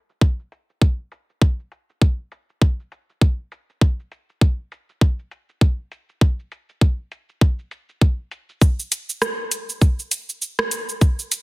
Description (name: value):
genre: downtempo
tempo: 100 BPM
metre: 4/4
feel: swing 58% on 16ths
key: none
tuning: none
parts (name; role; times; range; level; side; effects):
- deep house drum kit; drums; 0.1-11.4 s; cabasa, hi-hat, rim click; -24 LUFS; right 1 dB; overdrive, low-pass filter on perc, low-pass filter on snare, low-pass filter on hats
- electronic kick drum; drums; 0.2-11.2 s; none; -15 LUFS; equal; none
room: digital ambience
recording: dense, heavily limited modern master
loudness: -19 LUFS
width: side -21 dB against mid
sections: 0.0-8.6 A section; 8.6-11.4 B section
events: none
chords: none